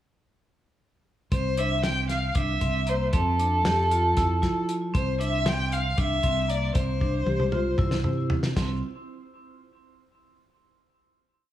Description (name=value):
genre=progressive instrumental, band music in an uneven meter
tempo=232 BPM (eighths)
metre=7/8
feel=straight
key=C mixolydian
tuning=A4 = 441 Hz
part: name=warm violin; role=melody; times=1.3-8.0 s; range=A4 to G5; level=-27 LUFS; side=left 1 dB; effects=tape echo
part: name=vibraphone with hard mallets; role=arpeggios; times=1.3-8.8 s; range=Bb3 to G4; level=-32 LUFS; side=right 3 dB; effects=tape echo
part: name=fingered electric bass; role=bass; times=1.3-8.8 s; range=C2 to F3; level=-27 LUFS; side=equal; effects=none
part: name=warm soul drum kit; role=drums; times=1.3-8.7 s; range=crash cymbal, hi-hat, kick drum, snare drum, toms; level=-28 LUFS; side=equal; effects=none
room=light reverb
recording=small room ambience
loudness=-23 LUFS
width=side -13 dB against mid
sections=1.3-8.6 A section; 8.6-10.4 final note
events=drum fill 7.0-8.6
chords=1.3 C; 3.1 Fmaj7; 4.9 C; 8.6 N.C.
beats=| 1.32 1.58 1.84 2.10 2.35 2.61 2.87 | 3.13 3.39 3.65 3.91 4.17 4.43 4.69 | 4.95 5.20 5.46 5.72 5.98 6.24 6.50 | 6.76 7.01 7.27 7.53 7.79 8.05 8.31 | 8.57